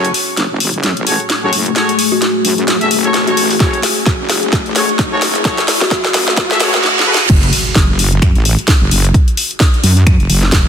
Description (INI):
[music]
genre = bass house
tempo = 130 BPM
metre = 4/4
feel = swing 58% on 16ths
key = F# minor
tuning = A4 = 440 Hz
[part]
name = deep dark ambient pad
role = sustained chords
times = 0.0-6.8 s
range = A3 to G#4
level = -20 LUFS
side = left 5 dB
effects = chorus, built-in reverb, sidechain pumping
[part]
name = clear horn section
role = stabs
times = 0.0-7.2 s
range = F#4 to E5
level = -19 LUFS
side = left 1 dB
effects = sidechain pumping, low-pass filter, dub echo
[part]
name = wobble bass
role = bass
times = 0.0-10.7 s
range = E1 to F#2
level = -16 LUFS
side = equal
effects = chorus, tube saturation, sidechain pumping, high-pass filter
[part]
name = house drum kit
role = drums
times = 0.0-10.6 s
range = crash cymbal, finger snaps, hi-hat, snare drum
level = -15 LUFS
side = left 1 dB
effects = overdrive, high-pass filter on hats, high-pass filter on snare, high-pass filter on cymbals
[part]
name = riser, reverse cymbal and impact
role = sound effects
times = 0.1-9.1 s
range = none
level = -21 LUFS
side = right 1 dB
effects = none
[part]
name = kalimba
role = melody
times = 2.1-6.0 s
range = F#4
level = -23 LUFS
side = right 1 dB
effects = dub echo
[part]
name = electronic kick drum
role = drums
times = 3.6-10.6 s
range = none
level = -12 LUFS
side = equal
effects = overdrive
[sound]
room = light reverb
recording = dense, heavily limited modern master, high-pass filter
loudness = -10 LUFS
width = side -8 dB against mid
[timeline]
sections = 0.0-7.3 A section; 7.3-10.7 B section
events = build-up 0.0-7.3; drum fill 0.0-6.8, 6.8-7.3; riser 0.1-6.8; reverse cymbal 6.4-7.3; drop 7.3-10.7; impact 7.3-9.1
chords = 0.0 F#madd9; 7.3 N.C.